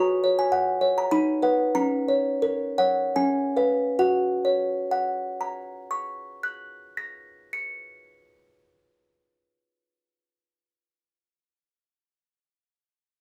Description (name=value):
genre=classical, lullaby for music box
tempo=68-107 BPM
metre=3/4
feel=straight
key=F# major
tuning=A4 = 440 Hz
part: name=music box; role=solo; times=0.0-10.8 s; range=C#4 to C#7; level=-25 LUFS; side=equal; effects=none
room=light reverb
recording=none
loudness=-25 LUFS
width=mono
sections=0.0-4.0 A section; 4.0-9.3 B section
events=slowing down 0.0-4.0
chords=0.0 F#5; 1.1 B/D#; 1.7 F#/C#; 3.2 C#7; 4.0 F#